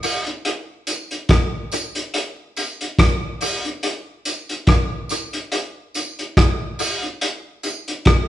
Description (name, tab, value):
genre	reggae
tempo	71 BPM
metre	4/4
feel	swing 56% on 16ths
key	none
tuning	none
part	vintage drum kit	drums	0.0-8.3 s	hi-hat, kick drum, rim click	-18 LUFS	equal	dub echo
part	tambourine	percussion	0.0-7.9 s	none	-29 LUFS	right 3 dB	none
room	moderate large studio reverb, RT60 1.1 s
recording	band playing live in one room, nothing above 10.7 kHz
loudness	-19 LUFS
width	side -13 dB against mid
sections	0.0-8.3 A section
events	none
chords	none